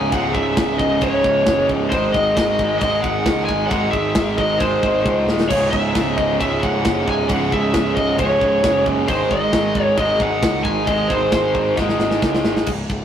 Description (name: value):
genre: heavy metal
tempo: 134 BPM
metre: 4/4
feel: straight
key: unclear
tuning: A4 = 439 Hz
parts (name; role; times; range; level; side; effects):
- lead guitar through a small cranked amp; melody; 0.0-11.7 s; B#4 to G#5; -20 LUFS; left 1 dB; overdrive
- tight distorted guitar; riff; 0.0-12.7 s; C#2 to G#3; -20 LUFS; right 2 dB; distortion
- fuzz picked electric bass; bass; 0.0-13.0 s; C#1 to C#2; -25 LUFS; equal; overdrive
- tight metal drum kit; drums; 0.1-13.0 s; crash cymbal, kick drum, snare drum; -23 LUFS; left 1 dB; none
room: moderate stone room reverb, RT60 1.2 s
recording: rough rehearsal-room recording, tube saturation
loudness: -16 LUFS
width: side -9 dB against mid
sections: 0.0-12.7 A section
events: drum fill 5.1-5.5, 11.8-12.7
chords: 0.0 C#m; 1.9 G#; 5.5 C#m; 9.1 G#